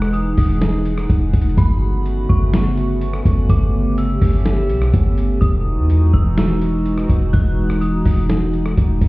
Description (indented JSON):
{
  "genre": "hip hop, atmospheric cloud-rap",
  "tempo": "125 BPM",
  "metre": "4/4",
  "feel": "half-time",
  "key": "E major",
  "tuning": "A4 = 441 Hz",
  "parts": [
    { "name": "dark detuned synth bell", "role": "melody", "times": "0.0-8.3 s", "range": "B5 to F#6", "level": "-33 LUFS", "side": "equal", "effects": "chorus, low-pass filter, tape echo" },
    { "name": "hollow soft pad", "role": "sustained chords", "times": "0.0-9.1 s", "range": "C#3 to G#4", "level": "-21 LUFS", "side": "equal", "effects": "chorus, sidechain pumping" },
    { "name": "warm 808-style bass", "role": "bass", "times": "0.0-9.1 s", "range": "E1 to E2", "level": "-17 LUFS", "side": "equal", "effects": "none" },
    { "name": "lo-fi sampler-style drum kit", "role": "drums", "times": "0.0-9.1 s", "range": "hi-hat, kick drum, rim click, snare drum", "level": "-18 LUFS", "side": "equal", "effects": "vintage 12-bit sampler grit" },
    { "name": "drifting glass-harmonics texture", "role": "texture", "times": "0.0-9.1 s", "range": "C#4 to F#5", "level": "-33 LUFS", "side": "left 1 dB", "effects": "chorus, built-in reverb" }
  ],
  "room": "digital ambience",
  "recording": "heard muffled through a wall, stone room reverb, EQ",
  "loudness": "-14 LUFS",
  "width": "side -20 dB against mid",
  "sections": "0.0-9.1 A section",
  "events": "none",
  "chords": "0.0 Emaj9; 1.6 Gmaj9#11; 5.4 Emaj9",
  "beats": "0.14 0.61 1.09 | 1.57 2.06 2.54 3.02 | 3.50 3.98 4.46 4.93 | 5.42 5.89 6.38 6.86 | 7.33 7.82 8.29 8.78"
}